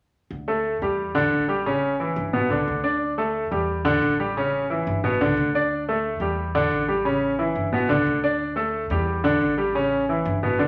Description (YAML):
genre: latin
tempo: 178 BPM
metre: 4/4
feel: straight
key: unclear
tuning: A4 = 441 Hz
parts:
  - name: upright bass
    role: bass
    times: 0.3-10.7 s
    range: G1 to E2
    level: -34 LUFS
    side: equal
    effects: none
  - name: clear concert grand piano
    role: accompaniment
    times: 0.5-10.7 s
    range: B2 to D5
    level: -24 LUFS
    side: equal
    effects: none
room: wet large studio reverb, RT60 0.9 s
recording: none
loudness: -23 LUFS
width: mono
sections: 0.3-10.7 A section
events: none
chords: 0.3 D5; 1.0 Em7; 1.7 A7; 2.3 G; 3.0 D5; 3.7 Em7; 4.4 A7; 5.0 G; 5.7 D5; 6.4 Em7; 7.1 A7; 7.7 G; 8.4 D5; 9.1 Em7; 9.8 A7